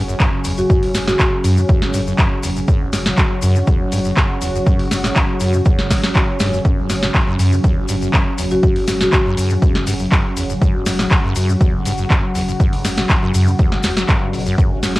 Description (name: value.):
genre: acid house.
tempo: 121 BPM.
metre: 4/4.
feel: straight.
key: unclear.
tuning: A4 = 442 Hz.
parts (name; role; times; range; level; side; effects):
warm analog pad; sustained chords; 0.0-15.0 s; C#3 to F#4; -24 LUFS; equal; chorus, sidechain pumping, cassette tape.
acid bass, saw; riff; 0.0-15.0 s; F#1 to F#3; -23 LUFS; equal; tube saturation, wide subtle chorus, sidechain pumping, cassette tape.
saturated sub bass; bass; 0.0-15.0 s; E1 to F#2; -21 LUFS; equal; sidechain pumping.
deep dark ambient pad; texture; 0.0-15.0 s; C#4 to F#5; -28 LUFS; right 1 dB; chorus, built-in reverb, sidechain pumping, cassette tape.
maracas; percussion; 0.1-15.0 s; none; -32 LUFS; left 8 dB; none.
booming analog drum machine; drums; 0.2-15.0 s; handclaps, hi-hat, snare drum; -21 LUFS; equal; cassette tape.
electronic kick drum; drums; 0.2-14.7 s; none; -15 LUFS; equal; cassette tape.
marimba with soft mallets; melody; 0.6-1.4, 8.5-9.2 s; F#4; -21 LUFS; left 1 dB; tape echo.
room: light reverb.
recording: home recording on cassette.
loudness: -14 LUFS.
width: side -19 dB against mid.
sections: 0.0-15.0 A section.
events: none.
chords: 0.0 F#5.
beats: 0.20 | 0.70 1.19 1.69 2.19 | 2.68 3.18 3.67 4.17 | 4.66 5.16 5.66 6.15 | 6.65 7.14 7.64 8.14 | 8.63 9.13 9.62 10.12 | 10.62 11.11 11.61 12.10 | 12.60 13.09 13.59 14.09 | 14.58.